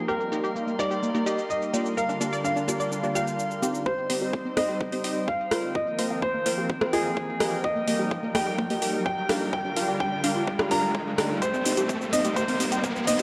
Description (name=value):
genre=progressive house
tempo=127 BPM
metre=4/4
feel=straight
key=C minor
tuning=A4 = 435 Hz
part: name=lush unison pad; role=sustained chords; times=0.0-13.2 s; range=D3 to C5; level=-34 LUFS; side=equal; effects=chorus, sidechain pumping
part: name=unison pluck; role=stabs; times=0.0-13.2 s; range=Bb3 to G5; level=-34 LUFS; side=equal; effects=sidechain pumping, digital delay
part: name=drifting glass-harmonics texture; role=texture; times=0.0-13.2 s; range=G5 to C6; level=-44 LUFS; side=equal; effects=none
part: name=clear baby grand piano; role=melody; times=0.1-13.2 s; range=Ab4 to Bb5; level=-32 LUFS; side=equal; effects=sidechain pumping, low-pass filter, digital delay
part: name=tight sequenced synth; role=arpeggios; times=0.1-13.2 s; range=Bb3 to F5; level=-35 LUFS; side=equal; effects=chorus, phaser, sidechain pumping, digital delay
part: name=deep house drum kit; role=drums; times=0.1-13.2 s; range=cabasa, hi-hat, rim click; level=-33 LUFS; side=equal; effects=overdrive, studio ambience
part: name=electronic kick drum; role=drums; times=3.9-12.9 s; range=none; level=-34 LUFS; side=equal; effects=overdrive, high-pass filter on kick, studio ambience
part: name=riser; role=sound effects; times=5.7-13.2 s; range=none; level=-36 LUFS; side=equal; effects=none
room=wet lush hall reverb, RT60 2.1 s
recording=dark, warm production, low-pass filter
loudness=-26 LUFS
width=mono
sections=0.0-3.9 A section; 3.9-13.2 B section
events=build-up 3.9-13.2; riser 5.7-13.2; drum fill 11.4-13.2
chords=0.1 Eb; 2.0 Gm7/D; 3.9 Cm; 5.8 Bbsus2; 7.6 Eb; 9.5 Gm7/D; 11.4 Cm